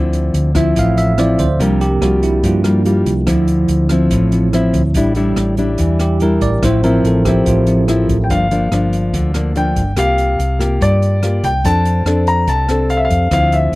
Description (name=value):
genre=bossa nova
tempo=143 BPM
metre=4/4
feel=straight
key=D minor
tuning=A4 = 440 Hz
part: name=nylon-string guitar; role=accompaniment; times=0.0-13.8 s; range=G2 to A4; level=-17 LUFS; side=left 2 dB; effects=none
part: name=hollow-body short-scale fingered electric bass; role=bass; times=0.0-13.8 s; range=G1 to G2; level=-16 LUFS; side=equal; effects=none
part: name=open jazz drum kit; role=drums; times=0.1-13.8 s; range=hi-hat, kick drum, rim click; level=-23 LUFS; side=equal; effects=none
part: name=bell-like tine electric piano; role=accompaniment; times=0.5-8.3 s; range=F3 to F5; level=-18 LUFS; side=right 3 dB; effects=medium stereo tremolo
part: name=warm concert grand piano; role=melody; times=8.2-13.8 s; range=D5 to Bb5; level=-18 LUFS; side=left 1 dB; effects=none
room=little or no reverb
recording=dry, close 1970s-style studio recording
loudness=-12 LUFS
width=side -19 dB against mid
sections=0.0-8.3 A section; 8.3-13.8 B section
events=tine electric piano solo 0.0-8.3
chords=0.0 Dm9; 1.6 C7sus4; 3.3 Dm9; 4.9 A7sus4; 6.6 Fmaj9/A; 8.3 Gm7; 10.0 C7sus4; 11.6 F6